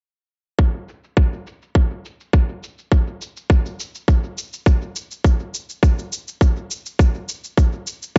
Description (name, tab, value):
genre	downtempo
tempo	103 BPM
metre	4/4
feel	straight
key	none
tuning	none
part	cabasa	drums	0.6-8.1 s	none	-34 LUFS	equal	overdrive, low-pass filter on perc, low-pass filter on room
part	electronic kick drum	drums	0.6-8.2 s	none	-17 LUFS	equal	overdrive
room	little or no reverb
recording	echo-heavy mix, nothing above 7.7 kHz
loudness	-20 LUFS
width	mono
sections	0.6-8.2 A section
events	none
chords	none